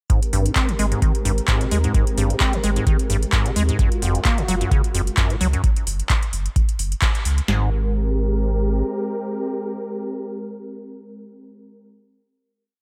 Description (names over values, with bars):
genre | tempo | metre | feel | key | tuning
acid house | 130 BPM | 4/4 | swing 55% on 16ths | Ab major | A4 = 441 Hz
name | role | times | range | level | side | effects
warm analog pad | sustained chords | 0.1-11.9 s | Ab3 to Bb4 | -30 LUFS | equal | chorus, sidechain pumping
acid bass, square | riff | 0.1-7.7 s | F2 to C4 | -26 LUFS | equal | analog chorus
booming analog drum machine | drums | 0.1-7.6 s | kick drum, snare drum | -22 LUFS | equal | overdrive
booming analog drum machine | drums | 0.1-7.5 s | handclaps, hi-hat | -28 LUFS | equal | overdrive
warm sub bass | bass | 0.3-8.8 s | Gb1 to Eb2 | -24 LUFS | equal | tube saturation, sidechain pumping
room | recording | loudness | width
little or no reverb | none | -21 LUFS | mono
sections
0.1-7.5 groove; 7.5-11.2 final chord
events
band accent 7.0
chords
0.1 Abmaj9; 3.8 Gbmaj9; 7.5 Abmaj9